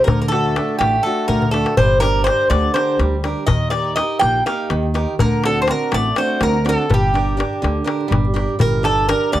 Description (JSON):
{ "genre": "greek folk, Greek bouzouki band", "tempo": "246 BPM (eighths)", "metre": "7/8", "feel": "straight", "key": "G minor", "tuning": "A4 = 440 Hz", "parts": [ { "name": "Greek bouzouki", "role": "melody", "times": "0.0-9.4 s", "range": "G4 to G5", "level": "-18 LUFS", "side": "right 1 dB", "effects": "none" }, { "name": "picked acoustic archtop guitar", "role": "accompaniment", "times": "0.0-9.4 s", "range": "D3 to Bb4", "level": "-23 LUFS", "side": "right 2 dB", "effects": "none" }, { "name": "upright bass", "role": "bass", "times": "0.1-9.4 s", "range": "G1 to Eb2", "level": "-21 LUFS", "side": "equal", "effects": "none" }, { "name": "darbuka", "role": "percussion", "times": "0.1-9.4 s", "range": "none", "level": "-21 LUFS", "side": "left 3 dB", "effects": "none" } ], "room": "little or no reverb", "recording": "dry, close 1970s-style studio recording", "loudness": "-15 LUFS", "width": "side -13 dB against mid", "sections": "0.0-8.6 A section", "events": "drum fill 1.3-1.8", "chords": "0.1 D; 1.8 Gm; 3.5 Eb; 5.2 D7; 6.9 Gm" }